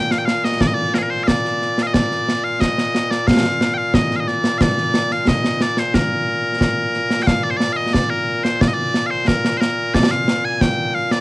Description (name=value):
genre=scottish traditional, Scottish pipe music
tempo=90 BPM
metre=2/4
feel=straight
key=Bb major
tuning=A4 = 440 Hz
part: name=loud bright bagpipes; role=melody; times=0.0-11.2 s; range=Bb2 to Ab5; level=-19 LUFS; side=left 1 dB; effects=cassette tape
part: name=concert snare drum and concert bass drum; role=drums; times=0.1-11.2 s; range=none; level=-18 LUFS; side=equal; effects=cassette tape
room=light reverb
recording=home recording on cassette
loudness=-16 LUFS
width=side -22 dB against mid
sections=0.0-7.3 A section; 7.3-11.2 B section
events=none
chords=none